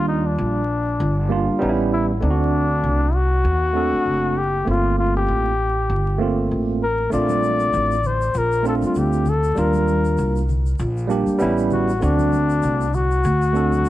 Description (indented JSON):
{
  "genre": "hip hop, jazz-hop",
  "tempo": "98 BPM",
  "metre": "4/4",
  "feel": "swing 58% on 16ths",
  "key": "unclear",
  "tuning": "A4 = 439 Hz",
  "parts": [
    { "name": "breathy flugelhorn", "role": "melody", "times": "0.0-13.9 s", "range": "D4 to D5", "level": "-22 LUFS", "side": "left 3 dB", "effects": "none" },
    { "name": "barky tine electric piano", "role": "accompaniment", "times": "0.0-13.9 s", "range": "G3 to A4", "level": "-22 LUFS", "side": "right 3 dB", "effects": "auto-pan" },
    { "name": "upright bass", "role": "bass", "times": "0.0-13.9 s", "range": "F#1 to Eb2", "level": "-21 LUFS", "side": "equal", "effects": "none" },
    { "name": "tube shaker and congas", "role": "percussion", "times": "7.1-13.9 s", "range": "none", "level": "-33 LUFS", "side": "left 6 dB", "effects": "none" }
  ],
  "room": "light reverb, small room ambience",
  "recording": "dark, warm production, vinyl crackle",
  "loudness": "-17 LUFS",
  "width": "side -14 dB against mid",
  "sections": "0.0-13.9 A section",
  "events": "none",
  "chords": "0.0 Ebmaj7; 1.6 A9; 2.2 D7; 4.7 Gm11; 7.1 Bbmaj7; 9.6 Ebmaj7; 11.4 A9; 12.0 D7"
}